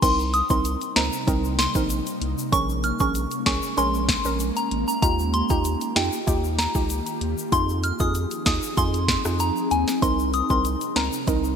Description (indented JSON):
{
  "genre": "dancehall",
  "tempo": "96 BPM",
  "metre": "4/4",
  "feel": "straight",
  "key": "C phrygian",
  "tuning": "A4 = 441 Hz",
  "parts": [
    { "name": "soft synth bell", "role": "melody", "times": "0.0-11.1 s", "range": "G5 to F6", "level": "-26 LUFS", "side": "left 1 dB", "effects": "chorus, phaser, ping-pong delay" },
    { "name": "soft round pluck", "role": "accompaniment", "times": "0.0-11.6 s", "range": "C4 to Bb4", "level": "-28 LUFS", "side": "right 6 dB", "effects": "chorus" },
    { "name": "ethereal airy pad", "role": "sustained chords", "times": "0.0-11.6 s", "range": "C3 to Ab4", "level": "-30 LUFS", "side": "equal", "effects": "ensemble chorus, built-in reverb, sidechain pumping" },
    { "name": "saturated sub bass", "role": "bass", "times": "0.0-11.6 s", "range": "Ab1 to F2", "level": "-27 LUFS", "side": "left 1 dB", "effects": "none" },
    { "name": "afro-pop drum kit", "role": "drums", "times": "0.0-11.4 s", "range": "crash cymbal, hi-hat, kick drum, rim click, snare drum", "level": "-25 LUFS", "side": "left 1 dB", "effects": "vintage 12-bit sampler grit, gated reverb" },
    { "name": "egg shaker", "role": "percussion", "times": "0.0-11.6 s", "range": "none", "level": "-37 LUFS", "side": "left 9 dB", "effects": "none" }
  ],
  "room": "moderate lush hall reverb, RT60 3.0 s",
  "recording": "bright 1980s-style digital production",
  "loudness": "-20 LUFS",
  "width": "side -7 dB against mid",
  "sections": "0.0-11.6 A section",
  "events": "none",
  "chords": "0.0 Cm7; 2.5 Bbm7; 5.0 Ebadd9; 7.5 Fm7; 10.0 Cm7"
}